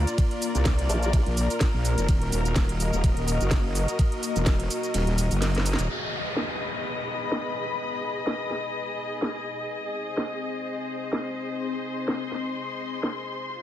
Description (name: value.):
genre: bass house.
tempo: 126 BPM.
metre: 4/4.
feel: swing 55% on 16ths.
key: G# minor.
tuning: A4 = 440 Hz.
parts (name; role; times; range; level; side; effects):
dark analog pad; sustained chords; 0.0-13.6 s; A#3 to D#5; -33 LUFS; left 3 dB; chorus, phaser, sidechain pumping.
wobble bass; bass; 0.0-5.9 s; D#1 to B#1; -25 LUFS; equal; chorus, overdrive, sidechain pumping.
muted studio string section; texture; 0.0-13.6 s; E#4 to B#5; -32 LUFS; left 2 dB; sidechain pumping.
garage drum kit; drums; 0.1-13.6 s; hi-hat, ride cymbal, shaker, snare drum; -31 LUFS; right 1 dB; low-pass filter on hats, low-pass filter on cymbals, low-pass filter on perc, low-pass filter on snare.
electronic kick drum; drums; 0.2-4.6 s; none; -22 LUFS; equal; none.
formant-sweep wobble bass; bass; 0.9-1.2 s; A#1; -25 LUFS; equal; chorus, sidechain pumping.
downlifter; sound effects; 5.9-9.7 s; none; -34 LUFS; equal; none.
room: light reverb.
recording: none.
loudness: -24 LUFS.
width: side -12 dB against mid.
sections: 0.0-5.9 A section; 5.9-13.6 B section.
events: drop 0.0-5.9; kick drops out 4.9-5.9; drum fill 5.4-5.9; band accent 5.7.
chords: 0.0 A#; 2.1 D#m; 5.9 G#m; 9.7 G#.